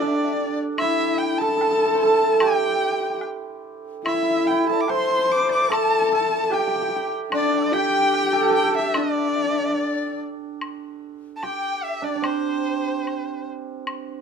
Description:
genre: chinese traditional, Chinese chamber ensemble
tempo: 74 BPM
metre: 2/4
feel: rubato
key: D shang mode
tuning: A4 = 440 Hz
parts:
  - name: clear erhu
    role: melody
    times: 0.0-13.5 s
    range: C5 to D6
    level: -25 LUFS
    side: right 1 dB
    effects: none
  - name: dark horsehead fiddle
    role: second line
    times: 0.0-10.2 s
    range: D4 to C5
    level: -23 LUFS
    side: left 6 dB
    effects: none
  - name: hammered dulcimer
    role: second line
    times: 0.0-14.2 s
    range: C4 to D5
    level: -25 LUFS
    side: right 8 dB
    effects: none
  - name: hollow large dizi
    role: second line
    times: 0.0-13.5 s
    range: E4 to E6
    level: -29 LUFS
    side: left 7 dB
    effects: none
  - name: woodblock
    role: percussion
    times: 0.8-14.1 s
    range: none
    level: -30 LUFS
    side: left 2 dB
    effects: none
room: light reverb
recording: close, detailed microphones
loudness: -19 LUFS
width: side -6 dB against mid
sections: 0.0-10.6 A section; 10.6-14.2 B section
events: none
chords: none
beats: 0.00 | 0.80 1.61 | 2.41 3.23 | 4.06 4.89 | 5.71 6.52 | 7.32 8.13 | 8.95 9.78 | 10.62 11.44 | 12.25 13.07 | 13.88

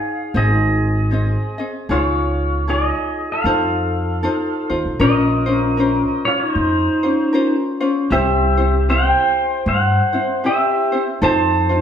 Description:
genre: Hawaiian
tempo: 77 BPM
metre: 4/4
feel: swing 61% on 8ths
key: Bb harmonic minor from 5.0 s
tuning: A4 = 445 Hz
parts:
  - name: pedal steel guitar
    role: melody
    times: 0.0-11.8 s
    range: Eb4 to A5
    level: -19 LUFS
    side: equal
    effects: none
  - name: ukulele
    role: accompaniment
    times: 0.0-11.8 s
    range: C4 to Eb5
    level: -20 LUFS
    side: left 2 dB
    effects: none
  - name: upright bass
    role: bass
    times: 0.3-11.8 s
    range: Ab1 to G2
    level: -20 LUFS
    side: equal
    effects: none
room: wet stone room reverb, RT60 1.3 s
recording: band playing live in one room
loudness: -15 LUFS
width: side -8 dB against mid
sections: 0.0-5.0 A section; 5.0-11.8 B section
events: none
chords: 0.3 Ab; 1.9 Dbadd9; 3.5 F7; 5.0 Bbmadd9; 8.1 C; 11.2 F7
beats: 0.35 1.12 | 1.90 2.68 3.45 4.23 | 5.01 5.78 6.56 7.33 | 8.11 8.89 9.66 10.44 | 11.21

